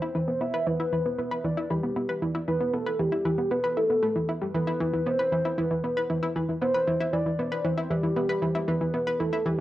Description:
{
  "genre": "ambient",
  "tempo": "116 BPM",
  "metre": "4/4",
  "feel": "straight",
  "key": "E minor",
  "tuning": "A4 = 440 Hz",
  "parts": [
    { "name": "soft octave-layered synth lead", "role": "melody", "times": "0.0-9.6 s", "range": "G4 to E5", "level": "-27 LUFS", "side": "equal", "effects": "chorus, phaser, cassette tape, plate reverb, tape echo" },
    { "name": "analog pluck", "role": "riff", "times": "0.0-9.5 s", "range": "E3 to B4", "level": "-27 LUFS", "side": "equal", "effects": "chorus, cassette tape, tape echo" }
  ],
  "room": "wet studio reverb, RT60 0.6 s",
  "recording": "home recording on cassette",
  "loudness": "-24 LUFS",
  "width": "side -14 dB against mid",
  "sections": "0.0-9.6 A section",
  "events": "none",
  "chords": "0.0 Em7",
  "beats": "| 0.41 0.92 1.44 1.96 | 2.47 2.99 3.51 4.03 | 4.54 5.06 5.58 6.09 | 6.61 7.13 7.65 8.16 | 8.68 9.20"
}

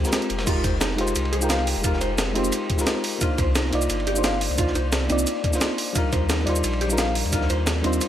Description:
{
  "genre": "liquid drum and bass",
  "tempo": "175 BPM",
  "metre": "4/4",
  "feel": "swing 53% on 16ths",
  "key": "F dorian",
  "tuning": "A4 = 440 Hz",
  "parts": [
    { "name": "mellow FM electric piano", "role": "accompaniment", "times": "0.0-8.1 s", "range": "G3 to G5", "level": "-26 LUFS", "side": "left 1 dB", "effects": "chorus, ping-pong delay" },
    { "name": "sub bass with octave", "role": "bass", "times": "0.0-8.0 s", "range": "F1 to Eb2", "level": "-26 LUFS", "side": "equal", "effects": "none" },
    { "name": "breakbeat sampler-style drum kit", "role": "drums", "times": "0.0-8.1 s", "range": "cabasa, crash cymbal, hi-hat, snare drum", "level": "-26 LUFS", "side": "right 1 dB", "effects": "none" },
    { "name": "crunchy breakbeat drum kit", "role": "drums", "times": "0.1-8.1 s", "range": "ride cymbal, snare drum", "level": "-33 LUFS", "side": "right 1 dB", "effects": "high-pass filter on cymbals, high-pass filter on snare, high-pass filter on room" },
    { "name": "mellow electric guitar", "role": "arpeggios", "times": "0.5-8.0 s", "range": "C4 to F5", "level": "-30 LUFS", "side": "right 1 dB", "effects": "ping-pong delay" },
    { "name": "electronic kick drum", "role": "drums", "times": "0.5-7.4 s", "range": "none", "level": "-25 LUFS", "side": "equal", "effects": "none" }
  ],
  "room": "light reverb",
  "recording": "none",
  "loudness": "-20 LUFS",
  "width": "side -11 dB against mid",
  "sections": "0.0-8.1 A section",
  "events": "none",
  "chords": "0.5 Fm11; 3.2 Cm11; 6.0 Ebmaj9",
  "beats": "0.13 | 0.47 0.81 1.16 1.50 | 1.84 2.19 2.53 2.87 | 3.21 3.56 3.90 4.24 | 4.58 4.93 5.27 5.61 | 5.96 6.30 6.64 6.99 | 7.33 7.67 8.01"
}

